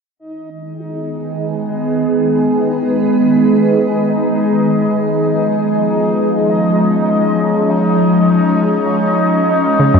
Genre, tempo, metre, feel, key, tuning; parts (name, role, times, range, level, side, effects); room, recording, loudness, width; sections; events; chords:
ambient, sequencer-driven space music; free time; G# dorian; A4 = 445 Hz
evolving wavetable pad; sustained chords; 0.7-10.0 s; D#3 to C#5; -13 LUFS; equal; ensemble chorus, built-in reverb, phaser
bubbling stepped-filter texture; texture; 0.2-10.0 s; D#4 to D#5; -19 LUFS; left 1 dB; chorus, built-in reverb
analog pluck; riff; 9.8-10.0 s; F#2 to C#3; -9 LUFS; right 1 dB; chorus
wet cathedral reverb, RT60 5.9 s; in a vast, echoing space, cassette tape; -12 LUFS; side -5 dB against mid
0.2-10.0 A section
filter sweep on ambient pad 0.2-10.0
0.2 G#m; 5.0 C#